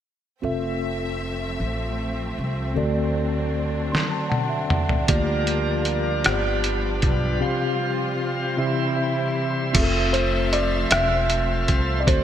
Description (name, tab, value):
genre	slow gospel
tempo	52 BPM (dotted quarters)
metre	6/8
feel	straight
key	F major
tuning	A4 = 445 Hz
part	mellow tine electric piano	accompaniment	0.4-12.2 s	G2 to C6	-25 LUFS	left 1 dB	medium stereo tremolo
part	bright studio string section	sustained chords	0.4-12.2 s	E3 to E5	-31 LUFS	equal	none
part	upright bass	bass	0.4-12.2 s	E1 to F#2	-27 LUFS	equal	none
part	lo-fi sampler-style drum kit	drums	3.9-12.2 s	crash cymbal, hi-hat, kick drum, rim click, snare drum, toms	-23 LUFS	equal	none
part	bright tonewheel organ	sustained chords	5.1-12.2 s	G3 to E5	-28 LUFS	right 1 dB	slow rotary speaker, overdrive
part	warm grand piano	melody	10.1-12.2 s	C5 to E5	-24 LUFS	equal	none
room	moderate lush hall reverb, RT60 2.6 s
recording	bright 1980s-style digital production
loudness	-20 LUFS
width	side -10 dB against mid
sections	0.4-9.7 A section; 9.7-12.2 B section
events	drum fill 3.9-5.1; tine electric piano fill 3.9-5.1, 8.6-9.7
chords	0.4 Fmaj7; 2.8 D7; 5.1 Gm7/D; 6.3 G7; 7.4 Csus4; 8.6 C; 9.7 Fmaj7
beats	| 0.44 1.60 | 2.77 3.93 | 5.09 6.26 | 7.42 8.59 | 9.75 10.91 | 12.07